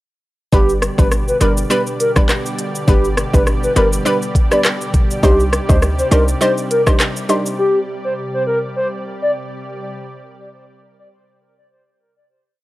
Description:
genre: dancehall.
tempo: 102 BPM.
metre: 4/4.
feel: swing 56% on 16ths.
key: C harmonic minor.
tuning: A4 = 440 Hz.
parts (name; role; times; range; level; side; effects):
hollow clarinet-like synth lead; melody; 0.5-9.3 s; G4 to D5; -19 LUFS; equal; chorus, tape echo.
analog pluck; accompaniment; 0.5-7.4 s; G3 to C5; -20 LUFS; equal; chorus.
lush unison pad; sustained chords; 0.5-9.9 s; B2 to D5; -26 LUFS; equal; chorus, sidechain pumping.
short 808-style bass; bass; 0.5-6.3 s; G1 to D2; -17 LUFS; equal; none.
island pop drum kit; drums; 0.5-7.6 s; handclaps, hi-hat, kick drum, rim click, shaker; -16 LUFS; equal; overdrive.
room: little or no reverb.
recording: dry, gritty hardware recording.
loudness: -13 LUFS.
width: side -17 dB against mid.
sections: 0.5-9.9 chorus.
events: none.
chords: 0.5 G; 5.2 Cmadd9.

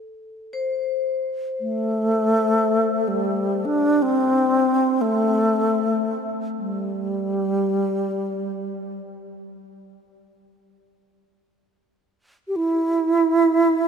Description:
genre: world meditative, free-time meditation music.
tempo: free time.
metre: none.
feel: none.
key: C major pentatonic.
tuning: A4 = 440 Hz.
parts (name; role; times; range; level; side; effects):
vibraphone with hard mallets; texture; 0.0-9.5 s; A4 to C5; -30 LUFS; left 5 dB; none.
mellow alto flute; melody; 1.6-13.9 s; G3 to G4; -19 LUFS; equal; tape echo.
room: wet huge ambient reverb, RT60 4.0 s.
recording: none.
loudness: -19 LUFS.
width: side -6 dB against mid.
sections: 0.0-13.9 A section.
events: none.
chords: none.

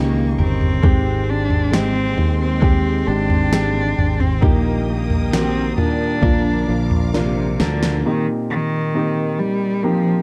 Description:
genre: pop ballad.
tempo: 67 BPM.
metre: 4/4.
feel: straight.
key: Eb major.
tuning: A4 = 440 Hz.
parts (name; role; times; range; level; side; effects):
warm cello; melody; 0.0-10.2 s; C3 to D4; -24 LUFS; equal; none.
warm baby grand piano; accompaniment; 0.0-10.2 s; Ab2 to Bb4; -25 LUFS; equal; none.
warm studio string section; sustained chords; 0.0-8.0 s; Ab3 to Eb6; -36 LUFS; equal; none.
direct-recorded clean electric guitar; arpeggios; 0.0-8.1 s; Bb2 to Bb4; -31 LUFS; equal; none.
sustaining fretless electric bass; bass; 0.0-8.0 s; G1 to Bb2; -24 LUFS; equal; none.
smooth R&B drum kit; drums; 0.4-8.0 s; kick drum, snare drum, toms; -22 LUFS; equal; none.
room: little or no reverb.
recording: dark, warm production.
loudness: -18 LUFS.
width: mono.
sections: 0.0-8.1 A section; 8.1-10.2 B section.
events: drum fill 7.1-8.1.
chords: 0.0 Eb7; 0.8 Abmaj7; 4.4 Eb/Bb; 6.2 Bb; 8.1 Eb6.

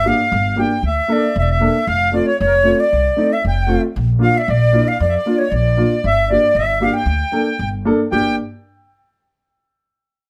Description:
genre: klezmer.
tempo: 115 BPM.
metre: 4/4.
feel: straight.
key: G dorian sharp4.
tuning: A4 = 445 Hz.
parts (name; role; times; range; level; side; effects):
bright reedy concert flute; melody; 0.0-8.4 s; C#5 to G5; -20 LUFS; equal; none.
accordion; second line; 0.0-8.4 s; Bb4 to G5; -25 LUFS; equal; none.
dark upright piano; accompaniment; 0.0-8.4 s; A3 to A4; -21 LUFS; equal; none.
upright bass; bass; 0.0-8.4 s; E1 to F2; -21 LUFS; equal; none.
room: wet small room reverb, RT60 0.5 s.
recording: none.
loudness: -16 LUFS.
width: mono.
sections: 0.0-8.1 A section; 8.1-10.2 B section.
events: none.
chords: 0.0 Gm; 1.9 F; 3.9 Bb; 6.0 Gm.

